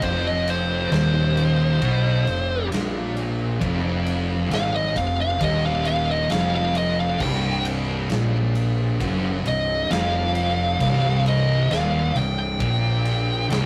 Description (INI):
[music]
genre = stoner and doom metal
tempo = 67 BPM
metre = 4/4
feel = straight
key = C minor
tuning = A4 = 440 Hz
[part]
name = fuzz lead guitar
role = melody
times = 0.0-13.7 s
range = C5 to G5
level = -27 LUFS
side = equal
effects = distortion
[part]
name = thick fuzz guitar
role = riff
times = 0.0-13.7 s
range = C2 to B2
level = -25 LUFS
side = equal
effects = distortion
[part]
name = fuzz fingered electric bass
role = bass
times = 0.0-13.7 s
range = C1 to B1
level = -29 LUFS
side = equal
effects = overdrive
[part]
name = big rock drum kit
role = drums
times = 0.0-13.7 s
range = crash cymbal, kick drum, ride cymbal, snare drum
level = -33 LUFS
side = equal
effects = none
[sound]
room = moderate stone room reverb, RT60 1.3 s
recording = rough rehearsal-room recording, warm saturation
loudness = -22 LUFS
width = mono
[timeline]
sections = 0.0-13.7 A section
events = lead electric guitar solo 0.0-13.7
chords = 0.0 F5; 7.2 Cm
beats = | 0.03 0.92 1.82 2.72 | 3.61 4.51 5.41 6.31 | 7.20 8.10 9.00 9.90 | 10.80 11.70 12.60 13.50